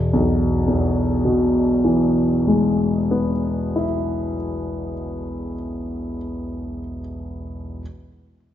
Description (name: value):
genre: classical, impressionist solo piano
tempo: 30 BPM (dotted quarters)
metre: 9/8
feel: rubato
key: E major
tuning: A4 = 440 Hz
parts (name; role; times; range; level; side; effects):
- warm grand piano; solo; 0.0-7.8 s; E1 to E4; -19 LUFS; left 1 dB; none
room: moderate recital hall reverb, RT60 1.6 s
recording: nothing above 7.8 kHz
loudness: -19 LUFS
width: side -11 dB against mid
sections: 0.0-5.5 A section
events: none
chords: 0.0 E